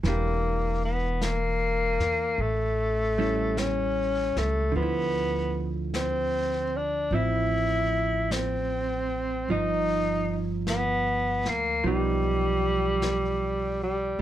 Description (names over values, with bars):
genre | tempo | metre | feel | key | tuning
jazz ballad | 51 BPM | 4/4 | swing 68% on 8ths | unclear | A4 = 437 Hz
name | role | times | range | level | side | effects
hollow-body jazz guitar | accompaniment | 0.0-14.2 s | D3 to G4 | -32 LUFS | right 4 dB | none
upright bass | bass | 0.0-14.2 s | E1 to E2 | -30 LUFS | equal | none
vintage brush drum kit | drums | 0.0-14.2 s | brushed snare drum, hi-hat, snare drum | -37 LUFS | left 2 dB | none
warm tenor saxophone | melody | 0.1-14.2 s | G3 to E4 | -26 LUFS | left 1 dB | none
room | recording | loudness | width
moderate club reverb, RT60 0.8 s | none | -24 LUFS | side -12 dB against mid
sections
0.0-14.2 A section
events
none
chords
0.0 Em7b5; 2.4 A7; 4.8 Dm9; 9.5 G7b13